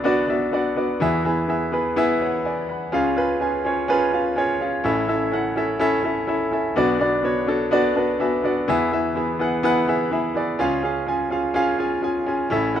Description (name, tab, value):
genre	pop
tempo	125 BPM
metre	4/4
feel	straight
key	unclear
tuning	A4 = 440 Hz
part	clear grand piano	solo	0.0-12.8 s	A1 to B5	-19 LUFS	equal	ping-pong delay
room	light reverb, small room reverb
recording	rough home demo mix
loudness	-19 LUFS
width	side -9 dB against mid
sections	0.0-12.5 A section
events	grand piano fill 0.3-1.0, 7.7-8.7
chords	0.0 Bm; 1.0 E; 2.9 C#; 4.8 A; 6.8 Bm; 8.7 E; 10.6 C#